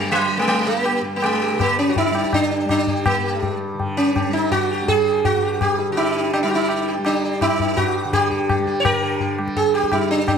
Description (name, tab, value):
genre	indian classical, Hindustani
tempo	165 BPM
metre	4/4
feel	straight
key	G raga todi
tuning	A4 = 441 Hz
part	sitar	melody	0.0-10.4 s	F#3 to C#5	-19 LUFS	right 1 dB	none
part	tanpura	drone	0.0-10.4 s	G2 to G3	-27 LUFS	equal	none
part	tabla	percussion	0.1-10.4 s	none	-24 LUFS	left 4 dB	none
room	light reverb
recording	close, detailed microphones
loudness	-17 LUFS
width	side -7 dB against mid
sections	0.0-8.8 A section; 8.8-10.4 B section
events	speeding up 0.0-10.4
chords	none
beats	| 0.11 0.48 0.85 1.22 | 1.59 1.96 2.33 2.70 | 3.06 3.43 3.79 4.16 | 4.52 4.89 5.25 5.61 | 5.98 6.34 6.70 7.06 | 7.42 7.78 8.13 8.49 | 8.85 9.21 9.56 9.92 | 10.27